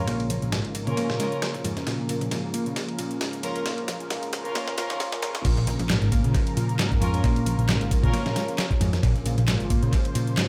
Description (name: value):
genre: breakbeat, breaks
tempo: 134 BPM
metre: 4/4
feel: swing 55% on 16ths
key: Bb minor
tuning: A4 = 440 Hz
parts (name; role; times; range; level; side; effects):
- lush unison pad; sustained chords; 0.0-10.5 s; Db3 to C5; -34 LUFS; equal; chorus, phaser, sidechain pumping
- modern bright picked electric bass; riff; 0.0-10.5 s; Ab2 to Bb3; -32 LUFS; equal; tube saturation, low-pass filter, analog delay
- hollow-body short-scale picked electric bass; bass; 0.0-9.9 s; Ab1 to Bb2; -30 LUFS; equal; low-pass filter
- dusty soul sampler-style drum kit; drums; 0.1-10.5 s; crash cymbal, kick drum, ride cymbal, snare drum; -29 LUFS; equal; high-pass filter on cymbals, high-pass filter on kick, high-pass filter on snare, analog delay
- garage drum kit; drums; 0.1-10.5 s; handclaps, hi-hat; -39 LUFS; equal; overdrive, analog delay
- warm chamber string section; stabs; 0.9-8.3 s; Db4 to Bb4; -35 LUFS; equal; low-pass filter, analog delay
room: light reverb, digital ambience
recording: echo-heavy mix, high-pass filter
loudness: -25 LUFS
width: mono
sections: 0.0-5.5 A section; 5.5-10.5 B section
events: build-up 0.0-5.5; filter sweep on picked electric bass 0.0-5.5; filter sweep on analog synth pad 0.0-5.5; filter sweep 0.0-5.5; drum fill 1.9-5.5; drop 5.5-10.5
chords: 0.0 Bbm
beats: | 0.08 0.53 0.97 1.42 | 1.87 2.32 2.76 3.21 | 3.66 4.11 4.55 5.00 | 5.45 5.90 6.35 6.79 | 7.24 7.69 8.14 8.58 | 9.03 9.48 9.93 10.38